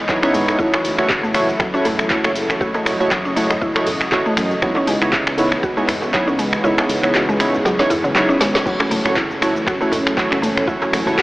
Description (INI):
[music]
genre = afro house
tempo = 119 BPM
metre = 4/4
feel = swing 56% on 16ths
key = F# dorian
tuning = A4 = 440 Hz
[part]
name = warm analog pad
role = sustained chords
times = 0.0-11.2 s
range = C#3 to D#5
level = -24 LUFS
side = equal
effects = chorus, sidechain pumping
[part]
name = mallet-like synth pluck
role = arpeggios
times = 0.1-11.2 s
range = C#3 to F#4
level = -23 LUFS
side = equal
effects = chorus, sidechain pumping, diffuse ambient delay
[part]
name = warm analog keys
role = stabs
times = 0.1-11.2 s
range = A3 to C#5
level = -20 LUFS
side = right 1 dB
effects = chorus, sidechain pumping, diffuse ambient delay
[part]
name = afro-pop drum kit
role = drums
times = 0.1-11.2 s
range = crash cymbal, finger snaps, handclaps, hi-hat, shaker, snare drum, toms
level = -20 LUFS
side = equal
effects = studio reverb
[part]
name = electronic kick drum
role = drums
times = 0.1-11.2 s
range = none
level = -29 LUFS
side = equal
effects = studio reverb
[part]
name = djembe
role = percussion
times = 0.1-11.2 s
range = none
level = -29 LUFS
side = equal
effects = none
[part]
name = smooth synth bass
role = bass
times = 0.3-11.2 s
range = E1 to F#2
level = -28 LUFS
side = equal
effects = tube saturation, sidechain pumping
[part]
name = congas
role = percussion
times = 8.8-11.2 s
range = none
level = -32 LUFS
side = left 1 dB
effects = none
[sound]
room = wet huge ambient reverb, RT60 7.9 s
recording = dreamy mix soaked in reverb, AM radio sound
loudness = -15 LUFS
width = side -19 dB against mid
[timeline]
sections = 0.0-11.2 A section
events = kick drops out 6.6-8.7; drum fill 7.6-8.7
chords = 0.0 C#m9; 0.6 F#m7; 4.6 C#m9; 8.7 F#m7